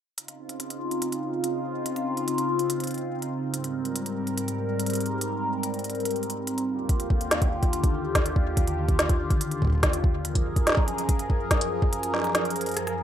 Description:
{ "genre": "IDM", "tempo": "143 BPM", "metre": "4/4", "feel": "straight", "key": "Db lydian", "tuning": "A4 = 440 Hz", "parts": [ { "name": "phased analog pad", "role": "sustained chords", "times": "0.4-13.0 s", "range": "Eb2 to Bb4", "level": "-27 LUFS", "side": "equal", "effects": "phaser, chorus" }, { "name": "organic electronic drum kit", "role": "drums", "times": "0.2-13.0 s", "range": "hi-hat, rim click, snare drum", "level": "-28 LUFS", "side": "equal", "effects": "none" }, { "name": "electronic kick drum", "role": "drums", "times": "6.9-11.9 s", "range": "none", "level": "-23 LUFS", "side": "equal", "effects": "overdrive" } ], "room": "light reverb", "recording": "rough home demo mix", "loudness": "-24 LUFS", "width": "side -10 dB against mid", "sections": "0.2-13.0 A section", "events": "break 11.9-13.0; drum fill 12.8", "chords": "0.2 Dbmaj9; 3.5 Abmaj9; 6.7 Ebmaj9; 10.2 Gbmaj9", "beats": "| 0.18 0.60 1.02 1.44 | 1.86 2.28 2.70 3.12 | 3.54 3.96 4.38 4.79 | 5.21 5.63 6.05 6.47 | 6.89 7.31 7.73 8.15 | 8.57 8.99 9.41 9.83 | 10.25 10.67 11.09 11.51 | 11.93 12.35 12.77" }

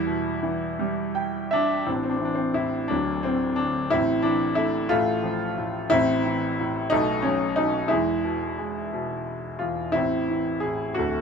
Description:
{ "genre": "classical, lyrical solo piano", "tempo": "59 BPM (dotted quarters)", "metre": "6/8", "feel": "rubato", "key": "A harmonic minor", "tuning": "A4 = 439 Hz", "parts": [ { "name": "clear grand piano", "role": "solo", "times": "0.0-11.2 s", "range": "D1 to G5", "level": "-22 LUFS", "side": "equal", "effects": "none" } ], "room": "light reverb", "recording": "minimal, uncompressed stereo recording", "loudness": "-22 LUFS", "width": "side -6 dB against mid", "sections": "0.0-1.9 A section; 1.9-11.2 B section", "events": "grand piano fill 0.8-1.9", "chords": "0.0 Em; 1.9 A5; 2.9 D; 3.9 Am; 4.9 F/A; 5.9 Am; 6.9 B5; 7.9 E; 10.0 Am", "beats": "0.80 | 1.87 2.90 | 3.92 4.91 | 5.91 6.91 | 7.90 8.92 | 9.95 10.97" }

